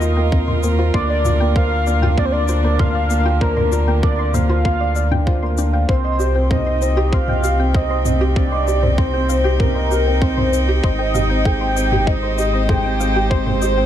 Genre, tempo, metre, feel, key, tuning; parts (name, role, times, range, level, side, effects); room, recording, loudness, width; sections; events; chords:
piano and strings electronica; 97 BPM; 4/4; straight; C minor; A4 = 441 Hz
warm velvety synth lead; melody; 0.0-13.9 s; Bb4 to G5; -22 LUFS; equal; chorus, tremolo
warm string quartet; sustained chords; 0.0-13.9 s; C3 to G5; -26 LUFS; right 2 dB; sidechain pumping
soft round pluck; arpeggios; 0.0-13.8 s; C4 to C6; -30 LUFS; left 2 dB; chorus, sidechain pumping, ping-pong delay
felt-muted upright piano; riff; 0.0-13.9 s; Bb3 to F5; -23 LUFS; left 1 dB; ping-pong delay
round analog bass; bass; 0.0-13.9 s; Ab1 to Eb2; -19 LUFS; equal; sidechain pumping
electronic shaker and toms; drums; 0.0-13.7 s; -25 LUFS; right 1 dB; overdrive
electronic kick drum; drums; 0.3-13.4 s; -18 LUFS; equal; overdrive
digital ambience; dark, warm production; -15 LUFS; side -10 dB against mid
0.0-13.9 A section
0.0 Ebsus2; 0.9 Bb/D; 5.9 Cm; 10.8 Abmaj7